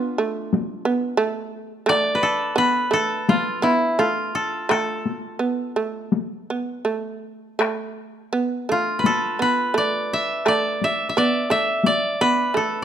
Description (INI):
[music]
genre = japanese traditional, Japanese chamber music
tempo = 84 BPM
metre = 4/4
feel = uneven beats, rubato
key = unclear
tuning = A4 = 440 Hz
[part]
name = koto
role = melody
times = 0.0-12.8 s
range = D4 to E5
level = -21 LUFS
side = left 1 dB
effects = none
[part]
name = shamisen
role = second line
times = 0.0-12.8 s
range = A3 to B3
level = -24 LUFS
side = right 4 dB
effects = none
[part]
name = taiko ensemble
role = percussion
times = 0.5-12.0 s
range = none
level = -23 LUFS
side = left 4 dB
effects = none
[sound]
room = light reverb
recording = close, detailed microphones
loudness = -19 LUFS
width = side -9 dB against mid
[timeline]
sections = 0.0-12.8 A section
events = none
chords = none